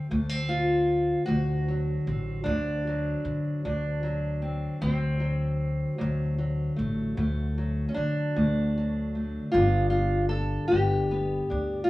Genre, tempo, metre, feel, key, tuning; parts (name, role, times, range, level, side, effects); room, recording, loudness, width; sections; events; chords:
acoustic country blues, solo or duo; 51 BPM (dotted quarters); 12/8; straight; D mixolydian; A4 = 441 Hz
fingerpicked steel-string acoustic guitar; melody; 0.0-11.9 s; D2 to A4; -26 LUFS; equal
upright bass; bass; 0.1-11.8 s; G1 to D3; -29 LUFS; left 1 dB
moderate stone room reverb, RT60 1.2 s; band playing live in one room, studio reverb; -24 LUFS; side -18 dB against mid
0.0-11.9 A section
0.0 D7; 9.5 G7